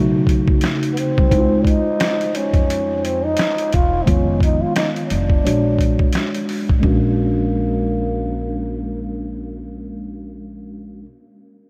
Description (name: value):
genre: hip hop, jazz-hop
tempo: 87 BPM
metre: 4/4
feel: swing 57% on 16ths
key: Bb minor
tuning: A4 = 440 Hz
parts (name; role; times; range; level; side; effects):
- mellow tine electric piano; accompaniment; 0.0-11.1 s; C#3 to C#5; -24 LUFS; equal; low-pass filter
- upright bass; bass; 0.0-11.1 s; E1 to F2; -25 LUFS; equal; none
- boom bap sampler-style drum kit; drums; 0.3-7.0 s; hi-hat, kick drum, snare drum; -21 LUFS; equal; none
- growling trombone; melody; 0.9-10.4 s; Bb3 to F4; -26 LUFS; equal; low-pass filter, delay
room: moderate huge ambient reverb, RT60 7.4 s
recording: dreamy mix soaked in reverb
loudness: -18 LUFS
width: mono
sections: 0.0-6.8 A section; 6.8-9.6 B section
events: filter sweep 0.0-6.8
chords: 0.0 B9; 1.3 Dbmaj7; 4.1 Fm7b5; 5.5 Bb7alt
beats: 0.62 | 1.31 2.00 2.69 3.38 | 4.07 4.76 5.45 6.14 | 6.83 7.52 8.21 8.90